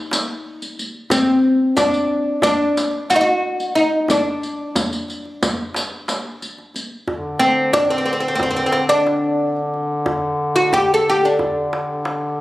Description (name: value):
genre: Turkish makam ensemble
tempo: 181 BPM (eighths)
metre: 9/8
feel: straight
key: D makam hicaz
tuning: A4 = 440 Hz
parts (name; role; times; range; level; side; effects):
- oud; melody; 0.0-12.4 s; C4 to A4; -17 LUFS; equal; none
- darbuka; percussion; 0.1-12.2 s; none; -27 LUFS; right 1 dB; none
- riq; percussion; 0.1-6.8 s; none; -24 LUFS; equal; none
- mellow duduk; drone; 7.1-12.4 s; D3; -23 LUFS; equal; none
room: moderate recital hall reverb, RT60 1.3 s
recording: recorded on a phone in the room, studio ambience, compression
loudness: -16 LUFS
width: side -16 dB against mid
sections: 0.0-7.1 A section; 7.1-12.4 B section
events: none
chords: none